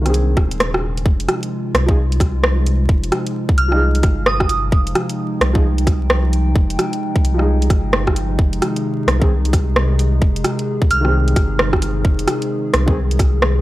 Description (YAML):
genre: future garage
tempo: 131 BPM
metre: 4/4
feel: swing 62% on 16ths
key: F minor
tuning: A4 = 438 Hz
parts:
  - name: felt-muted upright piano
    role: accompaniment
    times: 0.0-13.0 s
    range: Eb3 to Ab4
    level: -26 LUFS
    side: equal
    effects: sidechain pumping, tape echo
  - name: warbly tape-like pad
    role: sustained chords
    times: 0.0-13.6 s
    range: C3 to G5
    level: -24 LUFS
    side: equal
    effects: chorus, built-in reverb, vintage 12-bit sampler grit, sidechain pumping
  - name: warm sub bass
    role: bass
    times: 0.0-13.6 s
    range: Eb1 to C2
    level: -18 LUFS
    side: equal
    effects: sidechain pumping
  - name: garage drum kit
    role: drums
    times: 0.1-13.5 s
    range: hi-hat, rim click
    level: -19 LUFS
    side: equal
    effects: overdrive, studio ambience
  - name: electronic kick drum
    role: drums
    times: 0.4-13.3 s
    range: none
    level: -16 LUFS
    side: equal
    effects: overdrive, studio ambience
  - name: soft synth bell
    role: melody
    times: 3.6-4.7, 10.9-11.2 s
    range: Eb6 to F6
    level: -22 LUFS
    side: right 2 dB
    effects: chorus, tape echo
room: digital ambience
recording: dry, gritty hardware recording, vinyl crackle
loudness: -14 LUFS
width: side -16 dB against mid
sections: 0.0-1.1 A section; 1.1-13.6 B section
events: none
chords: 0.0 Ab; 1.1 Fm7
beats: 0.14 0.60 | 1.06 1.52 1.98 2.43 | 2.89 3.35 3.81 4.27 | 4.72 5.18 5.64 6.10 | 6.56 7.01 7.47 7.93 | 8.39 8.85 9.30 9.76 | 10.22 10.68 11.14 11.59 | 12.05 12.51 12.97 13.43